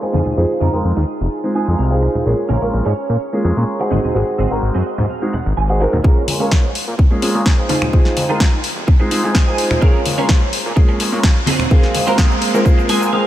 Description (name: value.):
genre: filtered disco house.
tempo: 127 BPM.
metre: 4/4.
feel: straight.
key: Bb minor.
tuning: A4 = 440 Hz.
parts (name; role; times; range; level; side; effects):
warm grand piano; accompaniment; 0.0-13.3 s; Ab3 to F5; -19 LUFS; equal; phaser, sidechain pumping, low-pass filter.
twelve-string electric guitar; riff; 0.0-13.3 s; C4 to Ab5; -25 LUFS; right 5 dB; analog chorus, sidechain pumping, low-pass filter.
tube shaker and congas; percussion; 0.0-13.1 s; none; -24 LUFS; left 1 dB; sidechain pumping on perc, low-pass filter on perc.
fat analog bass; bass; 0.1-13.1 s; F1 to Bb2; -19 LUFS; equal; sidechain pumping, high-pass filter, low-pass filter.
electronic kick drum; drums; 6.0-12.8 s; none; -12 LUFS; equal; studio reverb.
house drum kit; drums; 6.3-13.0 s; finger snaps, hi-hat, snare drum; -21 LUFS; left 1 dB; sidechain pumping on hats, studio reverb.
room: light reverb.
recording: none.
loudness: -13 LUFS.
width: side -13 dB against mid.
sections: 0.0-6.0 A section; 6.0-13.3 B section.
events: filter sweep 0.0-6.0, 6.0-13.3; clean electric guitar fill 1.3-2.3, 4.6-6.0, 9.1-9.8, 12.7-13.3; build-up 6.0-13.3.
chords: 0.1 Fm7; 2.3 Bbm7; 3.9 Ab7; 6.0 Bbm7; 7.7 Fm7; 9.8 Bbm7; 11.5 Ab7.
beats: | 0.37 0.84 1.32 1.79 | 2.26 2.73 3.21 3.68 | 4.15 4.62 5.10 5.57 | 6.04 6.51 6.99 7.46 | 7.93 8.40 8.88 9.35 | 9.82 10.29 10.77 11.24 | 11.71 12.18 12.66 13.13.